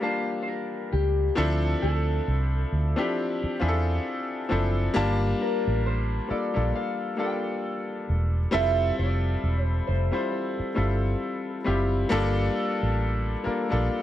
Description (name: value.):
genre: R&B, neo-soul.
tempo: 67 BPM.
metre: 4/4.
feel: swing 58% on 16ths.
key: G dorian.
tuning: A4 = 443 Hz.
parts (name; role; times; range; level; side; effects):
electric guitar through a small old amp; melody; 0.0-11.6 s; G4 to G5; -32 LUFS; equal; phaser, plate reverb.
bright baby grand piano; accompaniment; 0.0-14.0 s; F3 to A5; -27 LUFS; left 2 dB; plate reverb.
vintage muted fingered electric bass; bass; 0.9-13.9 s; E1 to E2; -25 LUFS; right 1 dB; none.
room: light reverb.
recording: dark, warm production.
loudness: -24 LUFS.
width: side -12 dB against mid.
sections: 0.0-14.0 A section.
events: none.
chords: 0.0 Gm7; 1.4 Dm9; 4.9 Gm7; 8.5 Fmaj9; 12.1 Gm7.